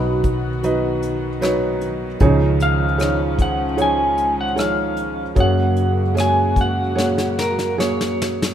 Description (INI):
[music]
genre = acoustic folk-pop ballad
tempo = 76 BPM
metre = 4/4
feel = straight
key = F# major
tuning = A4 = 442 Hz
[part]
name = electric guitar at the edge of break-up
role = melody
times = 0.0-8.5 s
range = A#4 to B5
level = -22 LUFS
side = equal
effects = tremolo
[part]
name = felt-muted upright piano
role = accompaniment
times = 0.0-8.5 s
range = F#1 to D#5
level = -21 LUFS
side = right 2 dB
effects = none
[part]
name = warm chamber string section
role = sustained chords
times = 0.0-8.5 s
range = C#3 to F#4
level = -27 LUFS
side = left 1 dB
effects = none
[part]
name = mellow fretless electric bass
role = bass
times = 0.0-8.5 s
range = B1 to F#2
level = -23 LUFS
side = equal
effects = none
[part]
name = soft brush drum kit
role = drums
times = 0.2-8.5 s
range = hi-hat, kick drum, rim click, snare drum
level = -23 LUFS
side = left 1 dB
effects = none
[sound]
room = light reverb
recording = minimal, uncompressed stereo recording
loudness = -16 LUFS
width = side -10 dB against mid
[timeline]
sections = 0.0-8.5 A section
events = drum fill 7.0-8.5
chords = 0.0 B; 2.2 C#add9; 5.4 F#add9